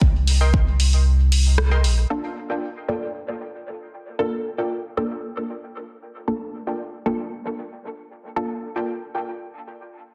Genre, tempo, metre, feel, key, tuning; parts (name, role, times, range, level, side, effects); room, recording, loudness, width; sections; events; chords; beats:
dub techno; 115 BPM; 4/4; straight; G minor; A4 = 445 Hz
pure sine sub bass; bass; 0.0-2.1 s; Bb1 to C2; -19 LUFS; equal; sidechain pumping
electronic kick drum; drums; 0.0-0.6 s; -20 LUFS; equal; overdrive, studio ambience
punchy analog drum machine; drums; 0.3-1.9 s; hi-hat, rim click; -28 LUFS; equal; low-pass filter on hats, studio ambience, soft clipping on snare, low-pass filter on snare
filtered dub chord stab; riff; 0.4-9.2 s; F4 to C6; -34 LUFS; equal; chorus, sidechain pumping, dub echo
filtered dub chord stab; stabs; 2.1-8.7 s; Bb3 to A4; -30 LUFS; equal; phaser, sidechain pumping, dub echo
light reverb, digital ambience; dense, heavily limited modern master; -23 LUFS; mono
0.0-2.1 A section; 2.1-10.1 B section
kick drops out 1.1-2.1; band accent 1.6; filter sweep on synth stab 2.1-10.1
0.0 Cm7; 2.1 Gm7
| 0.01 0.54 1.06 1.58 | 2.10 2.62 3.15 3.67 | 4.19 4.71 5.23 5.75 | 6.28 6.80 7.32 7.84 | 8.36 8.88